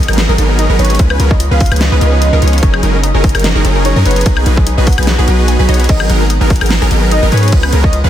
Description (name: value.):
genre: future bass.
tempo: 147 BPM.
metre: 4/4.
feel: swing 54% on 16ths, half-time.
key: F# major.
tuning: A4 = 438 Hz.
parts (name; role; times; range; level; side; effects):
shimmering ambient pad; sustained chords; 0.4-8.1 s; C#3 to B4; -25 LUFS; right 1 dB; none.
wide unison pluck; arpeggios; 0.0-8.1 s; D#4 to G#5; -24 LUFS; left 2 dB; sidechain pumping, ping-pong delay.
long sustained 808-style bass; bass; 0.0-8.1 s; F#1 to G#2; -12 LUFS; equal; sidechain pumping.
big-room dance drum kit; drums; 0.0-8.0 s; crash cymbal, hi-hat, snare drum, woodblock; -19 LUFS; left 2 dB; studio reverb.
wide unison pluck; arpeggios; 0.1-8.1 s; A#4 to C#5; -23 LUFS; right 1 dB; lush chorus, sidechain pumping, ping-pong delay.
supersaw chords; riff; 0.1-8.1 s; E#3 to C#5; -17 LUFS; equal; sidechain pumping.
warm velvety synth lead; melody; 0.6-8.1 s; F#4 to E#5; -20 LUFS; equal; chorus, tremolo, sidechain pumping, digital delay.
electronic kick drum; drums; 1.0-7.9 s; none; -12 LUFS; equal; overdrive, studio reverb.
room: little or no reverb.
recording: dense, heavily limited modern master.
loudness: -8 LUFS.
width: side -11 dB against mid.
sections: 0.0-8.1 A section.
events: none.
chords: 0.0 G#m9; 1.0 C#7; 2.6 F#69; 4.3 B6; 5.9 G#m9; 7.5 C#7.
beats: 0.18 0.59 | 0.99 1.40 1.81 2.22 | 2.63 3.04 3.44 3.85 | 4.26 4.67 5.08 5.48 | 5.89 6.30 6.71 7.12 | 7.53 7.93.